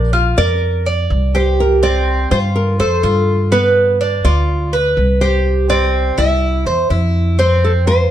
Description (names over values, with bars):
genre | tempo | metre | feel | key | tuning
latin, Cuban son and guajira | 124 BPM | 4/4 | straight | unclear | A4 = 439 Hz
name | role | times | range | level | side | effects
nylon-string guitar | melody | 0.0-8.1 s | A4 to E5 | -18 LUFS | left 1 dB | plate reverb
Cuban tres | arpeggios | 0.0-8.1 s | B3 to D5 | -17 LUFS | right 2 dB | none
upright bass | bass | 0.0-8.0 s | Bb1 to G2 | -16 LUFS | equal | none
room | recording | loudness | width
light reverb | dark, warm production | -12 LUFS | side -11 dB against mid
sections
0.0-7.4 A section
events
none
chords
0.0 Bb; 1.6 Csus4; 3.5 G7; 5.5 C; 7.4 F5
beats
0.13 0.61 1.10 | 1.58 2.07 2.55 3.03 | 3.52 4.00 4.48 4.97 | 5.45 5.93 6.42 6.90 | 7.39 7.87